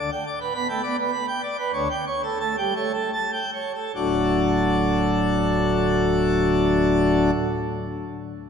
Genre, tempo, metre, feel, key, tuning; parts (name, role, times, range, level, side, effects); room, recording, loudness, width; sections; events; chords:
classical, organ toccata; 70-107 BPM; 3/4; straight; D major; A4 = 439 Hz
pipe organ, plenum; solo; 0.0-7.3 s; D1 to B5; -20 LUFS; equal
wet church reverb, RT60 3.4 s; -20 LUFS; side -7 dB against mid
0.0-4.0 A section; 4.0-8.5 B section
slowing down 0.0-4.0
0.0 G/D; 1.7 A7/D; 4.0 D